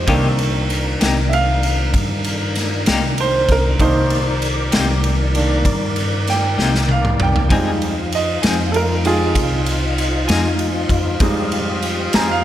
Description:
slow blues; 65 BPM (dotted quarters); 12/8; straight; C minor; A4 = 441 Hz
bright upright piano; accompaniment; 0.0-12.4 s; Eb3 to Bb5; -21 LUFS; right 3 dB; slapback echo
tonewheel organ; sustained chords; 0.0-12.4 s; Eb3 to E5; -24 LUFS; left 1 dB; overdrive, chorus vibrato, slow rotary speaker
upright bass; bass; 0.0-12.4 s; C2 to G2; -20 LUFS; equal
clean electric guitar; accompaniment; 0.1-12.3 s; C3 to Ab4; -24 LUFS; left 4 dB; tremolo, slapback echo
raw garage drum kit; drums; 0.1-12.3 s; kick drum, ride cymbal, snare drum, toms; -20 LUFS; equal
warm saxophone section; sustained chords; 7.5-12.4 s; F3 to F4; -28 LUFS; left 1 dB
moderate lush hall reverb, RT60 1.9 s, small room ambience; big arena sound; -15 LUFS; side -12 dB against mid
0.0-12.4 A section
upright piano solo 0.0-12.4; drum fill 6.6-7.5
0.1 Cm7; 7.5 Fm7

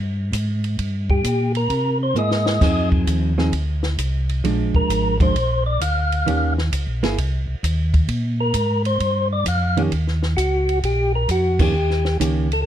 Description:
soul jazz organ trio; 131 BPM; 4/4; swing 67% on 8ths; Eb major; A4 = 445 Hz
mellow tonewheel organ; bass; 0.0-12.6 s; G1 to C3; -21 LUFS; equal; chorus vibrato, slow rotary speaker
compact cocktail drum kit; drums; 0.3-12.6 s; crash cymbal, hi-hat, kick drum, ride cymbal, snare drum; -24 LUFS; equal
percussive tonewheel organ; melody; 1.1-12.7 s; Gb4 to F5; -22 LUFS; equal; slow rotary speaker, plate reverb
hollow-body jazz guitar; accompaniment; 2.2-12.5 s; Eb3 to G#4; -22 LUFS; right 3 dB
light reverb; dark, warm production; -18 LUFS; side -11 dB against mid
0.0-9.9 A section; 9.9-12.7 B section
tonewheel organ solo 0.0-9.9; drum fill 2.2-2.6; band accent 11.5
0.0 N.C.; 0.8 Gm; 1.7 C7alt; 2.6 Fm7; 4.4 Bb7; 6.3 Eb7; 7.2 Cm; 8.1 Bb5; 9.9 Eb7

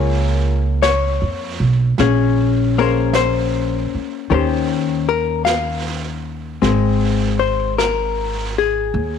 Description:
jazz ballad; 52 BPM; 4/4; swing 68% on 8ths; A4 = 440 Hz
hollow-body jazz guitar; accompaniment; 0.0-9.2 s; Eb3 to F5; -18 LUFS; left 10 dB
upright bass; bass; 0.0-9.2 s; Ab1 to F2; -20 LUFS; right 3 dB
jazz brush drum kit; drums; 0.8-9.2 s; brushed snare drum, hi-hat, snare drum; -28 LUFS; right 8 dB
small room ambience; 1960s-style stereo with parts hard left and right; -16 LUFS; side -7 dB against mid
0.0-9.2 A section
0.0 Gbmaj9 (rootless); 2.0 Bbm9; 4.3 Eb13; 6.6 Abadd9

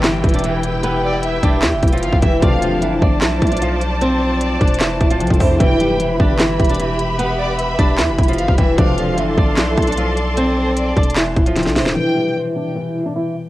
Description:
hip hop, trap; 151 BPM; 4/4; half-time; E phrygian; A4 = 441 Hz
flamenco guitar; melody; 0.0-13.3 s; E3 to D5; -20 LUFS; right 1 dB; low-pass filter, cassette tape, analog delay
concert harp; accompaniment; 0.0-13.5 s; B2 to G4; -24 LUFS; left 3 dB; low-pass filter, cassette tape
warm symphonic string section; sustained chords; 0.0-11.9 s; F3 to C6; -23 LUFS; equal; cassette tape
distorted 808-style bass; bass; 0.0-12.0 s; D1 to E2; -22 LUFS; equal; distortion
trap drum kit; drums; 0.0-12.0 s; handclaps, hi-hat, kick drum, snare drum; -16 LUFS; equal; cassette tape
downlifter; sound effects; 0.0-2.4 s; -32 LUFS; left 1 dB
warm studio violin section; second line; 1.0-12.3 s; C5 to G5; -27 LUFS; equal; cassette tape, analog delay
analog synth brass; stabs; 2.4-2.8, 5.6-6.0, 8.8-9.2 s; B1 to F3; -26 LUFS; right 1 dB; chorus, cassette tape, analog delay
light reverb; home recording on cassette; -14 LUFS; side -16 dB against mid
0.0-12.0 A section; 12.0-13.5 B section
drum fill 11.6-12.0
0.0 Em; 2.4 Dm7/E; 5.6 Em; 8.8 Dm7/E; 12.0 Em

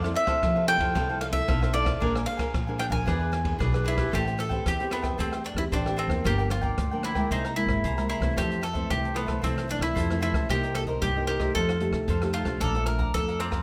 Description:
samba and choro; 113 BPM; 4/4; straight; A minor from 4.1 s; A4 = 439 Hz
bowl-back mandolin; melody; 0.0-13.6 s; B3 to Ab5; -31 LUFS; equal
cavaquinho; accompaniment; 0.0-13.6 s; D4 to Bb5; -37 LUFS; equal
nylon-string guitar; accompaniment; 0.0-13.6 s; F2 to C5; -35 LUFS; equal
upright bass; bass; 0.0-13.6 s; G1 to F3; -32 LUFS; equal
open jazz drum kit; drums; 0.0-13.6 s; hi-hat, kick drum, ride cymbal, rim click; -34 LUFS; equal
moderate large studio reverb, RT60 1.2 s; -26 LUFS; mono
0.0-4.1 A section; 4.1-13.6 B section
0.0 Fmaj7; 2.0 Bb9; 3.1 E7; 4.1 Am9; 6.2 Gm7; 7.3 Caug7; 8.4 Fmaj7; 10.5 Cm7; 11.6 F9; 12.6 Bbmaj7

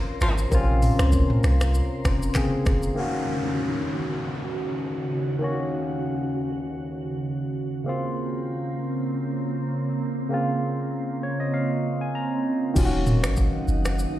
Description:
afrobeats; 98 BPM; 4/4; swing 55% on 16ths; A4 = 440 Hz
barky tine electric piano; accompaniment; 0.0-14.2 s; C3 to Bb5; -27 LUFS; left 2 dB; phaser
glassy FM pad; sustained chords; 0.0-14.2 s; Eb2 to C6; -30 LUFS; right 3 dB; ensemble chorus, built-in reverb
punchy sub bass; bass; 0.2-2.9, 12.8-14.1 s; Eb1 to Db2; -22 LUFS; equal
afro-pop drum kit; drums; 0.2-3.0, 12.8-14.1 s; crash cymbal, finger snaps, handclaps, hi-hat, kick drum, rim click, shaker, toms; -24 LUFS; equal
downlifter; sound effects; 3.0-7.9 s; -35 LUFS; equal
little or no reverb; played on a big sound system in a bare room, stone room reverb; -22 LUFS; side -14 dB against mid
0.0-3.0 A section; 3.0-12.8 B section; 12.8-14.2 A section
tine electric piano fill 10.9-12.8
0.0 Bbmadd9; 3.0 Ebm7; 7.9 Bbmadd9; 12.8 Ebm7

